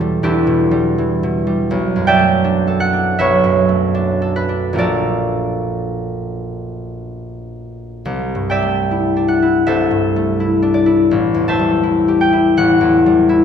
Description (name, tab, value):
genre	classical, solo harp piece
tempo	67-89 BPM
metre	4/4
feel	rubato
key	A dorian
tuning	A4 = 439 Hz
part	concert harp	solo	0.0-13.4 s	A1 to A5	-14 LUFS	equal	none
room	wet recital hall reverb, RT60 1.6 s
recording	none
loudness	-13 LUFS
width	side -7 dB against mid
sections	0.0-13.4 A section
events	none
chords	0.0 Em9; 1.7 Bm11; 4.8 Bbmaj7; 8.1 C69; 11.1 Am7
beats	0.24 0.97 | 1.71 2.44 3.18 3.94 | 4.77 5.61 6.41 7.22 | 8.05 8.90 9.66 10.39 | 11.11 11.85 12.57 13.29